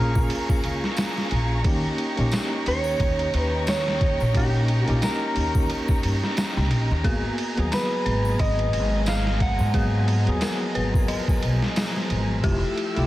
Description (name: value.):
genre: trip hop.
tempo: 89 BPM.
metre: 4/4.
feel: swing 57% on 16ths.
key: unclear.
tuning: A4 = 439 Hz.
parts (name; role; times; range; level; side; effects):
electric guitar through a small old amp; melody; 0.0-10.7 s; G4 to Gb5; -29 LUFS; right 1 dB; spring reverb, tape echo.
bell-like tine electric piano; accompaniment; 0.0-13.1 s; Gb3 to Ab4; -29 LUFS; equal; tremolo, tape echo.
dark symphonic violin section; sustained chords; 0.0-13.1 s; A4 to E6; -33 LUFS; left 1 dB; none.
upright bass; bass; 0.0-13.1 s; F1 to Ab2; -24 LUFS; equal; none.
trip hop sampler-style drum kit; drums; 0.2-13.1 s; kick drum, ride cymbal, snare drum; -26 LUFS; equal; vintage 12-bit sampler grit.
triangle and tambourine; percussion; 0.2-11.9 s; none; -43 LUFS; equal; none.
dark detuned synth bell; arpeggios; 7.0-13.1 s; G4 to Bb5; -33 LUFS; left 2 dB; chorus, tremolo, tape echo.
backwards swelling texture; texture; 9.3-13.1 s; F3; -38 LUFS; right 1 dB; none.
room: little or no reverb.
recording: dense, heavily limited modern master, vinyl crackle.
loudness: -21 LUFS.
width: side -15 dB against mid.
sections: 0.0-13.1 A section.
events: none.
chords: 0.0 Bbm7; 1.6 Eb7; 7.0 Abm9; 12.4 Fmaj9.